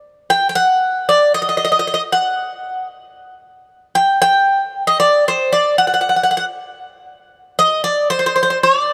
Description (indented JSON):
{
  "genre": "greek folk",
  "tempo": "230 BPM (eighths)",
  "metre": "7/8",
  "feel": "straight",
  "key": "unclear",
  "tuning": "A4 = 441 Hz",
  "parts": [
    { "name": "Greek bouzouki", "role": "solo", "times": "0.3-8.9 s", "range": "C5 to G5", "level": "-16 LUFS", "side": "equal", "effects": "none" }
  ],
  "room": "moderate plate reverb, RT60 3.3 s",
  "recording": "none",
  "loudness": "-16 LUFS",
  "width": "mono",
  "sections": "0.0-8.9 A section",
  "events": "none",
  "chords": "none"
}